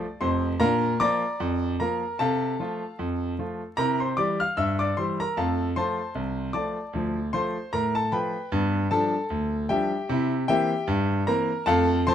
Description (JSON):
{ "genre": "ragtime piano", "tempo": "76 BPM", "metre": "2/4", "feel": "swing 55% on 16ths", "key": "F major", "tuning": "A4 = 440 Hz", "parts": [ { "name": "clear concert grand piano", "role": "solo", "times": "0.0-12.1 s", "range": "F1 to F6", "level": "-23 LUFS", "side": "equal", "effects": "none" } ], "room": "little or no reverb", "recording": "close, detailed microphones, vinyl crackle", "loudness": "-23 LUFS", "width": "side -9 dB against mid", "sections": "0.0-12.1 A section", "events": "none", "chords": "0.0 F5; 0.6 Bb; 2.2 F/C; 3.8 C; 5.4 F; 6.9 Dm; 8.5 G7; 10.1 C7" }